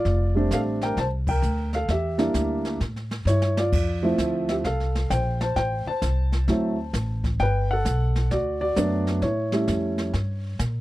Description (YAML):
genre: jazz piano trio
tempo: 131 BPM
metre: 4/4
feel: swing 66% on 8ths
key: D minor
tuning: A4 = 440 Hz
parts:
  - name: dark baby grand piano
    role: melody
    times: 0.0-10.6 s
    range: F3 to A5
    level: -24 LUFS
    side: equal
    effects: none
  - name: upright bass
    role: bass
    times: 0.0-10.8 s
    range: F1 to Bb2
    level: -25 LUFS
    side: equal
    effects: none
  - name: jazz brush drum kit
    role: drums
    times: 0.1-10.8 s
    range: brushed snare drum, crash cymbal, hi-hat, kick drum, snare drum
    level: -30 LUFS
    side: equal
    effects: none
room: little or no reverb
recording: dry, close 1970s-style studio recording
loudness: -22 LUFS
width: side -16 dB against mid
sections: 0.0-10.8 A section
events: band accent 1.2; drum fill 3.3-3.7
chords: 0.0 F6; 1.9 Em7b5; 2.8 A5; 3.7 Dm7; 5.6 Am; 6.5 D7; 7.4 Gmaj7; 9.2 A7